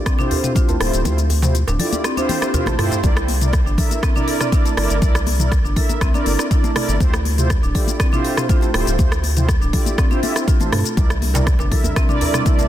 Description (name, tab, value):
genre	afro house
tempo	121 BPM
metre	4/4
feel	straight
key	unclear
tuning	A4 = 440 Hz
part	mellow synth brass	stabs	0.0-12.7 s	E4 to E5	-24 LUFS	right 2 dB	chorus, sidechain pumping, digital delay
part	marimba with medium hard mallets	arpeggios	0.1-12.7 s	A3 to A4	-25 LUFS	left 1 dB	vintage 12-bit sampler grit, sidechain pumping, digital delay
part	afro-pop drum kit	drums	0.1-12.7 s	hi-hat, rim click, shaker, toms	-23 LUFS	left 1 dB	soft clipping on snare
part	electronic kick drum	drums	0.1-12.6 s	none	-17 LUFS	equal	none
part	congas	percussion	0.2-12.7 s	none	-28 LUFS	left 3 dB	none
part	djembe	percussion	0.2-3.0, 11.0-12.7 s	none	-27 LUFS	right 1 dB	none
part	round analog bass	bass	0.8-11.7 s	D1 to G2	-20 LUFS	equal	tube saturation, sidechain pumping
part	swell	sound effects	2.3-3.0 s	none	-34 LUFS	equal	none
part	warm analog pad	sustained chords	11.0-12.7 s	C3 to E5	-28 LUFS	equal	chorus, sidechain pumping
room	light reverb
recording	dense, heavily limited modern master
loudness	-15 LUFS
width	side -12 dB against mid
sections	0.0-3.0 A section; 3.0-12.7 B section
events	filter sweep on analog polysynth 0.0-3.0; kick drops out 1.1-3.0; drum fill 2.3-3.0; drop 3.0-12.7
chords	0.0 Dm11; 3.0 C9; 7.0 Dm11; 11.0 C9